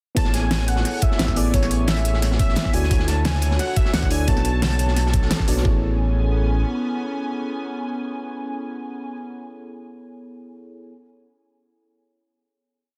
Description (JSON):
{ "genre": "liquid drum and bass", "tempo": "175 BPM", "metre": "4/4", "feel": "straight", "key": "A major", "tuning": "A4 = 441 Hz", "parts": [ { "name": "mellow FM electric piano", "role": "accompaniment", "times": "0.1-10.9 s", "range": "B3 to E5", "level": "-32 LUFS", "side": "equal", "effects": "chorus, digital delay" }, { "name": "warm velvety synth lead", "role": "melody", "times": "0.2-5.3 s", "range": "C#5 to A5", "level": "-32 LUFS", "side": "equal", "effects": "chorus, digital delay" }, { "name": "airy breathy pad", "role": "sustained chords", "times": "0.2-9.2 s", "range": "B3 to G#5", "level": "-34 LUFS", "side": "equal", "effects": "chorus" }, { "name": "smooth synth bass", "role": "bass", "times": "0.2-6.6 s", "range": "A1 to D2", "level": "-24 LUFS", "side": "equal", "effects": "none" }, { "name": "crunchy breakbeat drum kit", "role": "drums", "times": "0.2-5.6 s", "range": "hi-hat, snare drum", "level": "-33 LUFS", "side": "equal", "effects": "high-pass filter on hats, high-pass filter on snare, high-pass filter on room" }, { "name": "electronic kick drum", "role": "drums", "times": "0.2-5.7 s", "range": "none", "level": "-23 LUFS", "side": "equal", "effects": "none" }, { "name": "pop drum kit", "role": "drums", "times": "0.2-5.5 s", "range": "hi-hat, snare drum", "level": "-29 LUFS", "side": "equal", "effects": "none" }, { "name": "congas", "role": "percussion", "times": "3.3-4.7 s", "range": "none", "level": "-35 LUFS", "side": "equal", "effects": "none" } ], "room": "small room ambience", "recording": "dense, heavily limited modern master", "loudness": "-21 LUFS", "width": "mono", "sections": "0.2-5.7 drop; 5.7-8.4 final chord", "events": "drop 0.2-5.7; band accent 5.3", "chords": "0.2 Amaj7; 2.7 Dmaj9; 4.3 Bm7; 5.7 Amaj7" }